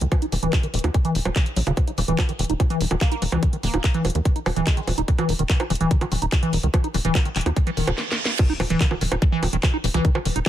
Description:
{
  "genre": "psychedelic trance",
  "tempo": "145 BPM",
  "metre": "4/4",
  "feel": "straight",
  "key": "unclear",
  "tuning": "A4 = 439 Hz",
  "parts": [
    { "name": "liquid acid bass", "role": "riff", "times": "0.0-10.5 s", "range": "Db3 to Eb4", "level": "-25 LUFS", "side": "equal", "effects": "phaser, auto-pan, sidechain pumping, tape echo" },
    { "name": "tight sequencer bass", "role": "bass", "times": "0.0-10.4 s", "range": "Eb1 to Eb2", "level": "-24 LUFS", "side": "equal", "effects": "none" },
    { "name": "garage drum kit", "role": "drums", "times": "0.0-10.5 s", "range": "bongos, crash cymbal, handclaps, hi-hat, snare drum", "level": "-27 LUFS", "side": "right 2 dB", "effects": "none" },
    { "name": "electronic kick drum", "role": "drums", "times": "0.1-10.5 s", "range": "none", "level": "-20 LUFS", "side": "equal", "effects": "none" },
    { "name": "resonant blip pluck", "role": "second line", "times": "3.0-5.1 s", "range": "Ab3 to Bb3", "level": "-35 LUFS", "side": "right 5 dB", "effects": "phaser, sidechain pumping, high-pass filter, ping-pong delay" },
    { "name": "reverse cymbal and impact", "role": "sound effects", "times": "7.7-10.0 s", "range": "none", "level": "-31 LUFS", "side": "right 4 dB", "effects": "none" }
  ],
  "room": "little or no reverb",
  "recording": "none",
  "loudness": "-19 LUFS",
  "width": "side -12 dB against mid",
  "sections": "0.0-8.4 A section; 8.4-10.5 B section",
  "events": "filter sweep on acid bass 0.0-8.4; reverse cymbal 7.7-8.4; drum fill 8.0-8.4; drop 8.4-10.5; impact 8.4-10.0",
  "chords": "0.0 Eb5"
}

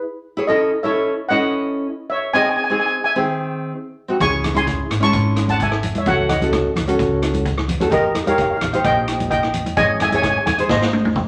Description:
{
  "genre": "calypso",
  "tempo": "129 BPM",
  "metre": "4/4",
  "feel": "straight",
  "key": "unclear",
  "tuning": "A4 = 440 Hz",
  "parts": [
    { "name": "nylon-string guitar", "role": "accompaniment", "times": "0.4-11.3 s", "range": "D#3 to C#5", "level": "-23 LUFS", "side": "equal", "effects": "none" },
    { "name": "steel pan", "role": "melody", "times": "0.5-11.1 s", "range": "A4 to C#6", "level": "-22 LUFS", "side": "equal", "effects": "none" },
    { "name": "upright bass", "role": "bass", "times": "4.2-11.3 s", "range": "G#1 to D#2", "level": "-27 LUFS", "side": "equal", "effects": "none" },
    { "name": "street-band drum kit", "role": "drums", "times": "4.2-11.3 s", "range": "hi-hat, kick drum, rim click, snare drum, toms", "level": "-26 LUFS", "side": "equal", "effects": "none" },
    { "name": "congas", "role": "percussion", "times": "4.2-11.2 s", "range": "none", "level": "-29 LUFS", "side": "equal", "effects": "none" }
  ],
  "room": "wet studio reverb, RT60 0.7 s",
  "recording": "none",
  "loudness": "-19 LUFS",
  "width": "mono",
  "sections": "0.0-11.3 A section",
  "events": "drum fill 10.7-11.3",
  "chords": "0.5 A; 2.4 G#; 4.2 C#m; 6.1 F#m/C#; 7.9 D#; 9.8 G#sus4; 10.7 G#"
}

